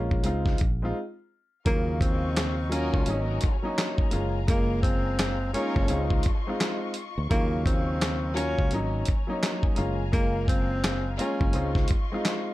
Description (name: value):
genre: hip hop, boom-bap hip-hop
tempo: 85 BPM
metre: 4/4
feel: swing 61% on 16ths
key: Eb dorian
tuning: A4 = 440 Hz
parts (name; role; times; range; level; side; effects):
- warm upright piano; accompaniment; 0.0-12.5 s; Db3 to F4; -31 LUFS; left 1 dB; high-pass filter, low-pass filter
- fingered electric bass; bass; 0.0-11.9 s; Gb1 to Eb2; -29 LUFS; equal; none
- dusty soul sampler-style drum kit; drums; 0.1-12.5 s; handclaps, hi-hat, kick drum, snare drum; -26 LUFS; equal; none
- breathy tenor saxophone; melody; 1.7-11.7 s; Bb3 to Db4; -31 LUFS; equal; high-pass filter, low-pass filter, ping-pong delay
- warm studio string section; sustained chords; 1.7-12.5 s; Gb3 to Db6; -39 LUFS; left 3 dB; high-pass filter, low-pass filter
- warm studio string section; stabs; 2.7-11.5 s; Bb3 to Bb4; -39 LUFS; left 1 dB; high-pass filter, low-pass filter, ping-pong delay
room: light reverb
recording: dark, warm production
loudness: -24 LUFS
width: side -16 dB against mid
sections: 0.0-1.7 A section; 1.7-12.5 B section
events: break 1.0-1.7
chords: 0.2 Dbmaj9; 1.7 Ebm9; 3.1 Ab9sus4; 4.1 Gbmaj9; 5.9 Dbmaj9; 7.3 Ebm9; 8.7 Ab9sus4; 9.8 Gbmaj9; 11.5 Dbmaj9